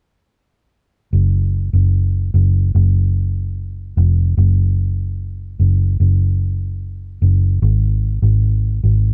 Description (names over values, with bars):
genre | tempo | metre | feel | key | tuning
pop | 74 BPM | 4/4 | straight | unclear | A4 = 441 Hz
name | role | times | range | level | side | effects
vintage muted fingered electric bass | bass | 1.1-9.1 s | E#1 to G#1 | -16 LUFS | equal | none
room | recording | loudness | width
little or no reverb | rough home demo mix | -16 LUFS | mono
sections
1.1-9.1 A section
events
none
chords
none